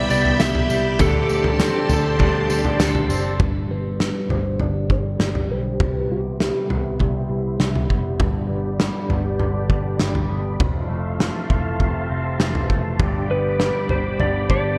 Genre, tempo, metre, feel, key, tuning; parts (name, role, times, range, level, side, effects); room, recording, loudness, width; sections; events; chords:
dream pop; 100 BPM; 4/4; straight; G mixolydian from 3.4 s; A4 = 440 Hz
electric slide guitar; melody; 0.0-7.0, 13.3-14.8 s; G4 to E5; -28 LUFS; equal; subtle chorus, low-pass filter, delay
electric guitar at the edge of break-up; accompaniment; 0.0-3.9, 13.0-14.8 s; G2 to A4; -31 LUFS; equal; harmonic tremolo, subtle chorus, low-pass filter
string machine, full ensemble; sustained chords; 0.0-14.8 s; G4 to D6; -30 LUFS; equal; ensemble chorus, low-pass filter
electric guitar at the edge of break-up; arpeggios; 0.0-14.8 s; F2 to A4; -30 LUFS; equal; subtle chorus, low-pass filter, delay
vintage muted picked electric bass; bass; 0.0-14.8 s; F1 to D2; -27 LUFS; equal
loose indie drum kit; drums; 0.1-14.6 s; kick drum, snare drum, tambourine, toms; -25 LUFS; equal; gated reverb
light reverb, studio reverb; bright 1980s-style digital production; -21 LUFS; mono
0.0-3.4 A section; 3.4-14.8 B section
filter sweep 3.4-14.8
0.0 Cmaj7; 1.0 D7sus4; 3.4 G; 5.8 Cmaj7; 8.2 G; 10.6 Fmaj7; 13.0 G